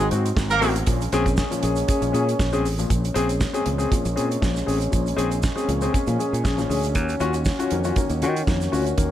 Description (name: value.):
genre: disco.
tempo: 118 BPM.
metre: 4/4.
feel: straight.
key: Bb minor.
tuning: A4 = 440 Hz.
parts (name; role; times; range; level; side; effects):
warm concert grand piano; accompaniment; 0.0-9.1 s; Ab2 to Ab4; -25 LUFS; left 3 dB; none.
mellow French horn section; sustained chords; 0.0-9.1 s; Eb3 to Gb4; -28 LUFS; equal; stereo widening.
dark horn section; stabs; 0.0-0.7 s; Bb3 to Bb4; -24 LUFS; right 3 dB; none.
fingered electric bass; bass; 0.0-9.1 s; Ab1 to Eb3; -25 LUFS; right 1 dB; none.
tube shaker; percussion; 0.0-9.1 s; none; -40 LUFS; right 7 dB; none.
damped 70s drum kit; drums; 0.1-9.1 s; hi-hat, kick drum, snare drum; -26 LUFS; right 1 dB; none.
room: light reverb, small room ambience.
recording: none.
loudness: -20 LUFS.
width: side -12 dB against mid.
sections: 0.0-2.9 A section; 2.9-9.1 B section.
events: none.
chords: 0.0 Ab7; 0.9 Bbm7; 7.0 Ebm7.